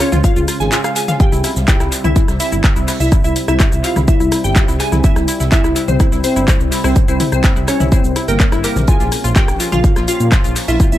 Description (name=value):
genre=melodic techno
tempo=125 BPM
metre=4/4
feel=straight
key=unclear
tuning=A4 = 439 Hz
part: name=expressive synth lead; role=melody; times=0.0-11.0 s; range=Bb3 to Ab4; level=-21 LUFS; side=equal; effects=wide subtle chorus, tape echo
part: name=glassy wavetable pluck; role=second line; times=0.0-11.0 s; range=Bb4 to Ab5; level=-25 LUFS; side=right 1 dB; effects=chorus, sidechain pumping, analog delay
part: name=sweeping resonant pad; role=sustained chords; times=0.0-11.0 s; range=C3 to F4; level=-25 LUFS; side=equal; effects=chorus, sidechain pumping
part: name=analog pluck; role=arpeggios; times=0.0-10.9 s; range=E4 to G5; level=-24 LUFS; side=left 2 dB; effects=chorus, sidechain pumping, dub echo
part: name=house drum kit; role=drums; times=0.0-11.0 s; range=handclaps, hi-hat, rim click, shaker, toms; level=-20 LUFS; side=left 1 dB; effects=analog delay
part: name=jazz brush drum kit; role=drums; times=0.0-10.9 s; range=hi-hat, snare drum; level=-34 LUFS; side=right 3 dB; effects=none
part: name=dark detuned saw bass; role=bass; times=0.1-11.0 s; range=G1 to Bb2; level=-19 LUFS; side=equal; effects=sidechain pumping
part: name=electronic kick drum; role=drums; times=0.2-10.9 s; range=none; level=-12 LUFS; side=equal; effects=none
room=digital ambience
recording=echo-heavy mix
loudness=-12 LUFS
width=side -13 dB against mid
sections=0.0-11.0 A section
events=none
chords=0.0 Db; 1.2 C; 8.9 Bbm